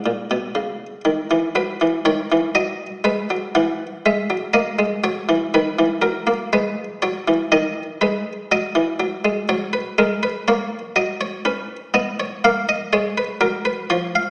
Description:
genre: classical, baroque-style two-part invention for harpsichord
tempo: 60 BPM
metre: 4/4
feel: straight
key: B major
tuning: A4 = 440 Hz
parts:
  - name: buff-stop harpsichord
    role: solo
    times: 0.0-14.3 s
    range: A#2 to F#5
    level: -18 LUFS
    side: equal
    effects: none
room: wet recital hall reverb, RT60 1.6 s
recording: recorded in a church or concert hall, small speaker sound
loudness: -18 LUFS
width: side -34 dB against mid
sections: 0.0-1.5 A section; 1.5-14.3 B section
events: none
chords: 0.0 F#; 1.5 B; 3.5 F#7/E; 5.5 B/D#; 9.5 F#; 11.5 C#7; 13.4 F#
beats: 0.54 | 1.54 2.55 3.55 4.55 | 5.54 6.53 7.52 8.51 | 9.49 10.48 11.46 12.44 | 13.43

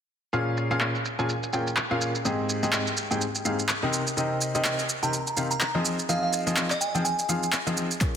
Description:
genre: piano house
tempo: 125 BPM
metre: 4/4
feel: swing 58% on 16ths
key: Bb dorian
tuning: A4 = 440 Hz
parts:
  - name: clear grand piano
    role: riff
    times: 0.3-8.2 s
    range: Ab2 to Ab5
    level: -26 LUFS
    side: left 1 dB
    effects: sidechain pumping, low-pass filter, ping-pong delay
  - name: punchy analog drum machine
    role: drums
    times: 0.3-8.1 s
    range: handclaps, hi-hat, shaker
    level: -28 LUFS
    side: right 1 dB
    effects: overdrive, low-pass filter on perc, low-pass filter on snare, low-pass filter on hats
  - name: glassy synth bell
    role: melody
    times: 5.0-7.5 s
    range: Eb5 to Bb5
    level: -29 LUFS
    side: right 2 dB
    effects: chorus, ping-pong delay
  - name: electronic kick drum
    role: drums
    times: 8.0-8.1 s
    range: none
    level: -23 LUFS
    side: equal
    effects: none
room: moderate lush hall reverb, RT60 2.2 s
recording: dense, heavily limited modern master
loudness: -24 LUFS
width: side -8 dB against mid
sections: 0.3-8.0 A section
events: drum fill 8.0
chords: 0.3 Bbm7; 2.2 Abmaj7; 3.9 Cm7; 5.8 Fm7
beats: | 0.33 0.81 1.29 1.77 | 2.25 2.73 3.21 3.69 | 4.17 4.65 5.13 5.61 | 6.09 6.57 7.05 7.53 | 8.01

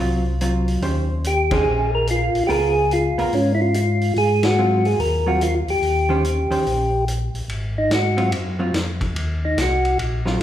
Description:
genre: soul jazz organ trio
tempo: 144 BPM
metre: 4/4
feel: swing 65% on 8ths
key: Ab mixolydian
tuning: A4 = 440 Hz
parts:
  - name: vintage hollow-body jazz guitar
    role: accompaniment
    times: 0.0-10.4 s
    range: Eb3 to C5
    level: -25 LUFS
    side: right 1 dB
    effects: none
  - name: mellow tonewheel organ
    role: bass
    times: 0.0-10.4 s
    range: Ab1 to Ab2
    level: -22 LUFS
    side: equal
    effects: overdrive, chorus vibrato, slow rotary speaker
  - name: vintage drum kit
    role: drums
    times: 0.4-10.4 s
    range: hi-hat, kick drum, ride cymbal, snare drum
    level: -29 LUFS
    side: equal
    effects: none
  - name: percussive tonewheel organ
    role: melody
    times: 1.3-10.0 s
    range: Db4 to Bb4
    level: -20 LUFS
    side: equal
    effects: slow rotary speaker
room: wet recital hall reverb, RT60 1.2 s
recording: recorded in a church or concert hall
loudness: -17 LUFS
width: side -11 dB against mid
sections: 0.0-7.5 A section; 7.5-10.4 B section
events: band accent 1.4, 4.4; tonewheel organ solo 7.5-10.4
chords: 0.0 Ab13 (rootless); 0.8 Eb6; 2.5 Db6; 4.2 Ab6; 5.8 Eb6; 7.5 Ab13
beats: 0.41 | 0.82 1.24 1.66 2.08 | 2.49 2.91 3.33 3.74 | 4.16 4.58 4.99 5.41 | 5.83 6.24 6.66 7.08 | 7.49 7.91 8.33 8.74 | 9.16 9.57 9.99 10.41

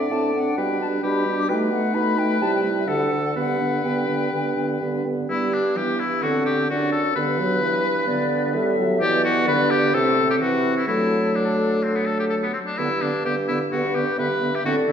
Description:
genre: quick classical-period movement for wind quintet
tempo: 129 BPM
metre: 4/4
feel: straight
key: G major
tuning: A4 = 440 Hz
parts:
  - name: silver concert flute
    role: melody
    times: 0.0-14.9 s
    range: A4 to D6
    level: -28 LUFS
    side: left 6 dB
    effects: none
  - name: bright oboe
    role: second line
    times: 0.0-14.9 s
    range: B3 to D5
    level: -24 LUFS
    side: left 2 dB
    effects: none
  - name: dark clarinet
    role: accompaniment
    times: 0.0-14.9 s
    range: A3 to E4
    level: -27 LUFS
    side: right 4 dB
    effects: none
  - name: warm French horn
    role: accompaniment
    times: 0.0-14.9 s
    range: C3 to C4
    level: -27 LUFS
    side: equal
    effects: none
  - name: dark bassoon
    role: bass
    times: 0.0-14.9 s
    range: D2 to D3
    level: -25 LUFS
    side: right 1 dB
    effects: none
room: wet recital hall reverb, RT60 1.7 s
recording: heard from further back in the room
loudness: -19 LUFS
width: side -8 dB against mid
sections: 0.0-5.3 A section; 5.3-14.9 A section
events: none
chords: 0.0 D5/A; 0.6 G/B; 1.5 B7; 2.4 C; 2.9 D; 3.4 G; 6.2 D7/A; 7.2 G; 9.0 G/B; 9.9 Am; 10.9 D; 12.8 G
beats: 0.11 0.57 1.03 | 1.49 1.95 2.41 2.88 | 3.36 3.84 4.33 4.81 | 5.29 5.76 6.23 6.69 | 7.15 7.62 8.08 8.54 | 9.00 9.47 9.94 10.40 | 10.88 11.35 11.83 12.30 | 12.78 13.25 13.72 14.19 | 14.65

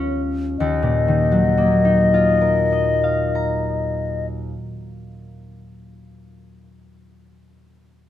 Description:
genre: classical, impressionist duo for flute and harp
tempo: 33 BPM (dotted quarters)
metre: 6/8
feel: rubato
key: Eb minor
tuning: A4 = 440 Hz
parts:
  - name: concert harp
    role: accompaniment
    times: 0.0-5.7 s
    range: Eb2 to Bb5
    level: -20 LUFS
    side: equal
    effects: none
  - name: silver concert flute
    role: melody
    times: 0.6-4.3 s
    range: Eb5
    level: -20 LUFS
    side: left 5 dB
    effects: none
room: light reverb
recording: none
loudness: -16 LUFS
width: side -12 dB against mid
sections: 0.6-4.2 A section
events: none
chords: 0.0 Db9/Eb; 0.6 Ebmadd9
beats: | 0.60 2.39

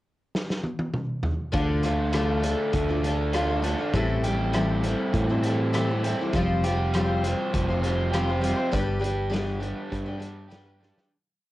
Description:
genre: folk rock and heartland rock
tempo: 100 BPM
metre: 4/4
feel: straight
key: D dorian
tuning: A4 = 440 Hz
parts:
  - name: vintage drum kit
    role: drums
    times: 0.4-11.1 s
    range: hi-hat, kick drum, rim click, snare drum, toms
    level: -31 LUFS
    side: equal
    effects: none
  - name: picked twelve-string acoustic guitar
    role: accompaniment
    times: 1.5-11.1 s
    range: A2 to C5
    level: -27 LUFS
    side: left 2 dB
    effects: none
  - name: crunchy overdriven guitar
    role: riff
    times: 1.5-11.1 s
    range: G2 to G4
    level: -29 LUFS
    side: right 2 dB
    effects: none
  - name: fingered electric bass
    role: bass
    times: 1.5-10.9 s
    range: F1 to A2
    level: -27 LUFS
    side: equal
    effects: none
room: light reverb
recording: home recording on cassette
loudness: -23 LUFS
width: side -16 dB against mid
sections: 0.0-1.5 pickup bar; 1.5-11.1 verse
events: drum fill 0.3-1.5, 10.8; fade-out 8.7-11.1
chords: 0.0 N.C.; 1.5 Dm; 3.9 Am7; 6.3 Fsus2; 8.7 G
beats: 0.35 0.94 | 1.54 2.14 2.74 3.34 | 3.94 4.54 5.14 5.74 | 6.34 6.94 7.53 8.13 | 8.73 9.32 9.92 10.52

